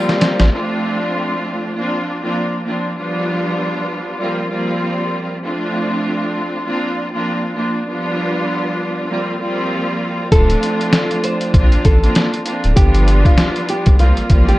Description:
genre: hip hop, boom-bap hip-hop.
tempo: 98 BPM.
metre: 4/4.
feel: swing 59% on 16ths.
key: D minor.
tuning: A4 = 441 Hz.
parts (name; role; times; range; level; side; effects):
nylon-string guitar; melody; 0.0-0.5, 10.3-14.6 s; G3 to C5; -21 LUFS; equal; high-pass filter, low-pass filter, analog delay.
clear studio string section; accompaniment; 0.0-14.6 s; F3 to F4; -18 LUFS; equal; high-pass filter, low-pass filter.
percussive tonewheel organ; sustained chords; 0.0-0.5 s; F4 to Bb5; -27 LUFS; left 2 dB; none.
trip hop sampler-style drum kit; drums; 0.1-0.5, 10.3-14.6 s; hi-hat, kick drum, snare drum; -14 LUFS; equal; none.
saturated sub bass; bass; 0.4-0.5, 10.3-14.5 s; D1 to C2; -14 LUFS; equal; none.
room: light reverb.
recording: dark, warm production.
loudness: -15 LUFS.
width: side -17 dB against mid.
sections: 0.5-10.3 A section; 10.3-14.6 B section.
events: drum fill 0.0-0.5.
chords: 0.0 C7sus4; 0.5 Dm7; 1.7 Bbadd9; 3.0 G7; 4.2 C7sus4; 5.4 Dm7; 6.6 Bbadd9; 7.9 G7; 9.1 C7sus4; 10.3 Dm7; 11.5 Bbadd9; 12.8 G7; 14.0 C7sus4.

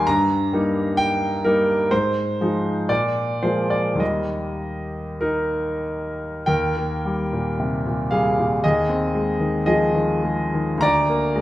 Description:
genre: classical, romantic character piece for solo piano.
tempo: 45-66 BPM.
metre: 2/4.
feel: rubato.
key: Eb major.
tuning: A4 = 441 Hz.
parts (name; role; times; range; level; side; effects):
bright concert grand piano; solo; 0.0-11.4 s; D2 to C6; -19 LUFS; equal; none.
room: moderate recital hall reverb, RT60 1.3 s.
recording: none.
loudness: -19 LUFS.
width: side -15 dB against mid.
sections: 0.0-6.5 A section; 6.5-11.4 B section.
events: none.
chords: 0.1 Eb/G; 1.9 Fm7/Ab; 2.9 Bb7; 4.0 Eb; 8.6 Fm7/Eb; 10.8 Bb/D.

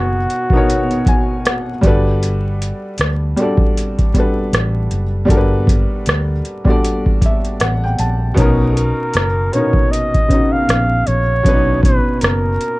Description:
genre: lo-fi hip hop.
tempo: 78 BPM.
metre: 4/4.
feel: swing 57% on 16ths.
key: unclear.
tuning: A4 = 440 Hz.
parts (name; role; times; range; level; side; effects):
breathy flugelhorn; melody; 0.0-1.8, 8.7-12.8 s; F#4 to F5; -19 LUFS; right 1 dB; tape echo.
felt-muted upright piano; accompaniment; 0.0-12.8 s; B2 to A5; -18 LUFS; equal; cassette tape.
vintage muted fingered electric bass; bass; 0.0-12.6 s; F#1 to D2; -18 LUFS; equal; none.
booming analog drum machine; drums; 0.3-12.8 s; hi-hat, kick drum, rim click; -16 LUFS; equal; vintage 12-bit sampler grit.
room: light reverb.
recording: vinyl crackle.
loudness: -13 LUFS.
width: side -20 dB against mid.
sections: 0.0-12.8 A section.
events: none.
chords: 0.0 Bmaj9; 1.8 Gmaj9; 8.4 Bmaj9.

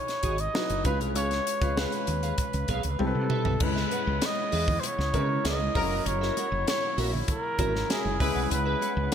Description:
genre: polished 1980s jazz-funk pop.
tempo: 98 BPM.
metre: 4/4.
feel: straight.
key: unclear.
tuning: A4 = 440 Hz.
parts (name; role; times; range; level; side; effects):
breathy flugelhorn; melody; 0.0-9.1 s; G#4 to D#5; -30 LUFS; right 1 dB; none.
dark grand piano; accompaniment; 0.0-9.1 s; F#3 to B5; -33 LUFS; left 3 dB; wide subtle chorus.
clean electric guitar; riff; 0.1-9.0 s; F#4 to F#5; -36 LUFS; right 3 dB; analog chorus.
crisp fusion drum kit; drums; 0.1-9.1 s; crash cymbal, hi-hat, kick drum, snare drum, toms; -31 LUFS; equal; gated reverb.
woody fretless electric bass; bass; 0.2-9.1 s; F#1 to C#3; -30 LUFS; equal; none.
warm woodwind section; sustained chords; 3.6-9.1 s; C#3 to E4; -39 LUFS; right 1 dB; none.
congas; percussion; 3.9-9.1 s; none; -41 LUFS; right 4 dB; none.
warm horn section; second line; 5.4-8.4 s; E3 to B4; -36 LUFS; left 1 dB; none.
room: light reverb, small room ambience.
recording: bright 1980s-style digital production.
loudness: -25 LUFS.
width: side -8 dB against mid.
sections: 0.0-3.6 A section; 3.6-9.1 B section.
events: drum fill 3.0-3.6.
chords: 0.0 Emaj9; 0.8 C#7; 3.0 Cmaj7; 3.6 C#m7; 5.8 F#7; 8.2 C#m7.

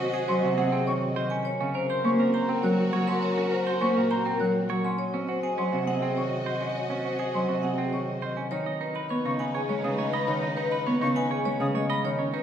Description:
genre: classical, minimalist pattern music.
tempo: 102 BPM.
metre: 3/4.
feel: straight.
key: G# minor from 8.5 s.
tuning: A4 = 440 Hz.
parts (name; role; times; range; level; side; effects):
vibraphone with medium hard mallets; melody; 0.0-12.4 s; Ab4 to C6; -30 LUFS; left 3 dB; none.
Celtic harp; accompaniment; 0.0-12.4 s; Bb2 to D#4; -28 LUFS; right 1 dB; none.
warm symphonic string section; sustained chords; 0.0-12.4 s; D#4 to Eb5; -34 LUFS; left 1 dB; none.
clean electric guitar; arpeggios; 0.0-12.4 s; C4 to D#5; -33 LUFS; right 5 dB; none.
concert flute; arpeggios; 0.3-12.1 s; Eb5 to Gb6; -36 LUFS; left 1 dB; none.
room: wet recital hall reverb, RT60 1.4 s.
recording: heard from further back in the room.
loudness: -24 LUFS.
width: side -9 dB against mid.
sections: 0.0-8.5 A section; 8.5-12.4 B section.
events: none.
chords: 0.0 Ab7sus4; 1.5 Gb; 5.0 Ab7sus4; 8.5 G#m.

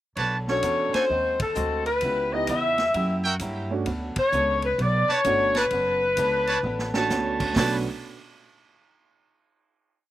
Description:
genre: jazz, big band swing.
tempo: 130 BPM.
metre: 4/4.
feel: swing 66% on 8ths.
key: B minor.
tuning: A4 = 441 Hz.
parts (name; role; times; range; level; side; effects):
picked acoustic archtop guitar; accompaniment; 0.2-7.8 s; C#3 to C#5; -34 LUFS; equal; slapback echo.
brilliant trumpet section; stabs; 0.2-7.8 s; D4 to A5; -27 LUFS; right 3 dB; none.
upright bass; bass; 0.2-7.8 s; F#1 to G2; -31 LUFS; right 1 dB; none.
swinging big-band drum kit; drums; 0.2-7.7 s; crash cymbal, hi-hat, kick drum, ride cymbal, snare drum, toms; -31 LUFS; right 1 dB; none.
clear saxophone section; melody; 0.5-7.1 s; A4 to E5; -22 LUFS; left 2 dB; none.
warm grand piano; accompaniment; 0.5-7.8 s; A3 to A4; -29 LUFS; right 5 dB; slapback echo.
room: little or no reverb.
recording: recorded outdoors, with no room sound.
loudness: -22 LUFS.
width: side -14 dB against mid.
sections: 0.2-7.6 A section; 7.6-9.4 final chord.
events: band accent 1.3, 4.1; drum fill 6.6-7.1.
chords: 0.2 Bm9; 1.1 G#7b9; 2.0 C#m7b5; 2.9 F#7b9; 3.9 Bm9.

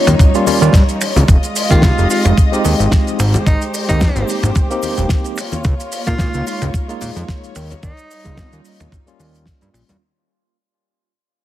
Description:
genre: nu-disco, nu disco.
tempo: 110 BPM.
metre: 4/4.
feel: swing 55% on 16ths.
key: unclear.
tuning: A4 = 440 Hz.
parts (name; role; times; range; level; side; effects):
tine electric piano; accompaniment; 0.0-10.0 s; G3 to G4; -20 LUFS; right 1 dB; medium stereo tremolo, sidechain pumping, dub echo.
dark studio string section; sustained chords; 0.0-10.0 s; G3 to Eb5; -23 LUFS; equal; vintage 12-bit sampler grit, sidechain pumping.
fat analog bass; bass; 0.1-10.0 s; Eb1 to C3; -16 LUFS; equal; tube saturation.
damped 70s drum kit; drums; 0.1-10.0 s; finger snaps, hi-hat, shaker, snare drum; -22 LUFS; left 1 dB; small room ambience.
congas and cabasa; percussion; 0.1-10.0 s; none; -25 LUFS; left 2 dB; none.
electronic kick drum; drums; 0.2-9.6 s; none; -13 LUFS; equal; small room ambience.
clear tenor saxophone; melody; 1.7-8.6 s; Eb4 to F4; -24 LUFS; right 1 dB; digital delay.
room: light reverb, studio reverb.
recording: heavily compressed radio sound.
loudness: -12 LUFS.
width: side -13 dB against mid.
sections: 0.0-10.0 A section.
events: drop 0.0-10.0; fade-out 1.3-10.0.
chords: 0.0 Eb7; 1.3 Fm7; 3.2 Abmaj7; 5.4 Db6; 7.6 Eb7.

